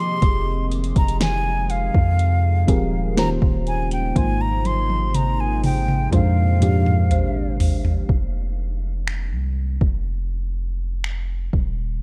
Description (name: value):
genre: contemporary R&B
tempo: 61 BPM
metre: 4/4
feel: straight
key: F dorian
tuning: A4 = 440 Hz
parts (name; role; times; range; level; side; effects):
- breathy mellow silver concert flute; melody; 0.0-7.6 s; F5 to C6; -29 LUFS; equal; tape echo
- mellow FM electric piano; accompaniment; 0.0-8.1 s; Ab2 to Eb5; -28 LUFS; equal; chorus
- deep dark ambient pad; sustained chords; 0.0-8.1 s; C3 to C5; -34 LUFS; equal; chorus, built-in reverb
- worn celesta; texture; 0.0-1.2, 7.1-8.5 s; C5 to Eb5; -41 LUFS; equal; tape echo
- long sustained 808-style bass; bass; 0.2-12.0 s; Eb1 to F2; -24 LUFS; equal; none
- smooth R&B drum kit; drums; 0.2-11.8 s; finger snaps, hi-hat, kick drum, snare drum, toms; -24 LUFS; equal; vintage 12-bit sampler grit
room: little or no reverb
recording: none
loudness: -21 LUFS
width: mono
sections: 0.0-8.1 A section; 8.1-12.0 B section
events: drum fill 4.2-8.1; break 8.1-12.0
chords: 0.0 Fm9; 3.2 Eb13; 4.2 Ab69; 6.1 Bb9; 8.1 F5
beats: | 0.22 1.21 2.19 3.17 | 4.16 5.14 6.12 7.11 | 8.09 9.07 10.06 11.04